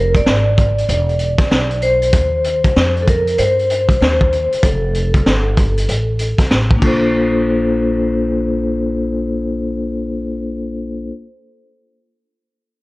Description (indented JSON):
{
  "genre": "hip hop, jazz-hop",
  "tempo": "96 BPM",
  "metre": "4/4",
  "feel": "swing 65% on 16ths",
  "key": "Bb major",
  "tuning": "A4 = 440 Hz",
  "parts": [
    { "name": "vibraphone with medium mallets", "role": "accompaniment", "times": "0.0-11.1 s", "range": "Bb3 to D5", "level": "-17 LUFS", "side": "left 1 dB", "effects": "none" },
    { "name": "upright bass", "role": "bass", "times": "0.0-11.1 s", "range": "E1 to G2", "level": "-20 LUFS", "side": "equal", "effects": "none" },
    { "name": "crunchy breakbeat drum kit", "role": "drums", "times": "0.1-7.0 s", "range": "crash cymbal, hi-hat, kick drum, snare drum", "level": "-16 LUFS", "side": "equal", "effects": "vintage 12-bit sampler grit" }
  ],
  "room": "light reverb, small room ambience",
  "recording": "cassette tape",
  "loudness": "-13 LUFS",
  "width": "side -21 dB against mid",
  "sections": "0.0-7.1 A section; 7.1-9.6 B section",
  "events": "vibraphone solo 0.0-7.1",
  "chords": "0.0 Fm; 0.9 E5; 2.1 Eb69; 4.6 Fadd9; 6.8 Bbmaj9"
}